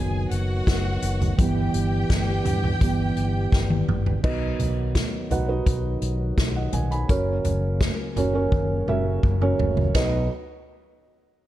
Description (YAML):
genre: piano-driven pop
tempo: 84 BPM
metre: 4/4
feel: straight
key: B major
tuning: A4 = 440 Hz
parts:
  - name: warm studio violin section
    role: second line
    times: 0.0-4.2 s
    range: F#4 to G#5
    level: -32 LUFS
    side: left 1 dB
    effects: none
  - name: felt-muted upright piano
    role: accompaniment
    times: 0.0-10.3 s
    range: B1 to B5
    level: -27 LUFS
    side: right 4 dB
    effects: none
  - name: percussive tonewheel organ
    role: sustained chords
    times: 0.0-10.3 s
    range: B2 to F#4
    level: -34 LUFS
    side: left 1 dB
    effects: chorus vibrato, slow rotary speaker
  - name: fingered electric bass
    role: bass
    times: 0.0-10.3 s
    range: F#1 to G2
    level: -26 LUFS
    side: equal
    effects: none
  - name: unplugged drum kit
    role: drums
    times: 0.3-10.1 s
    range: crash cymbal, hi-hat, kick drum, ride cymbal, snare drum, toms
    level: -24 LUFS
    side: equal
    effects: none
room: studio reverb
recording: dark, warm production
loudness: -21 LUFS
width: side -14 dB against mid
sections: 0.0-4.2 A section; 4.2-9.9 B section; 9.9-11.5 C section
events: felt piano solo 0.0-4.2; drum fill 3.5-4.2, 8.5-9.9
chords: 0.0 B/F#; 1.4 Em/G; 4.2 B; 7.1 F#; 9.9 B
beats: 0.67 | 1.39 2.10 2.81 3.52 | 4.24 4.95 5.67 6.38 | 7.09 7.81 8.52 9.23 | 9.95